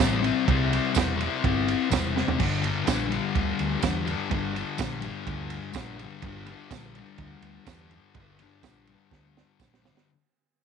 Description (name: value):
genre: garage rock duo or trio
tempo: 125 BPM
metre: 4/4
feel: straight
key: unclear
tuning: A4 = 440 Hz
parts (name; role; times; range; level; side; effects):
- thick fuzz guitar; riff; 0.0-10.1 s; G2 to C4; -28 LUFS; left 10 dB; distortion
- hollow-body short-scale picked electric bass; bass; 0.0-9.9 s; E1 to E2; -31 LUFS; right 2 dB; none
- crunchy breakbeat drum kit; drums; 0.0-10.1 s; crash cymbal, kick drum, ride cymbal, snare drum, toms; -28 LUFS; right 6 dB; none
- tambourine; percussion; 0.0-9.7 s; none; -37 LUFS; right 14 dB; none
room: small room ambience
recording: 1960s-style stereo with parts hard left and right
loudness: -24 LUFS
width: side -7 dB against mid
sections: 0.0-10.1 A section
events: fade-out 0.0-10.1; drum fill 2.2, 9.1-10.1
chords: 0.0 C; 2.4 Gm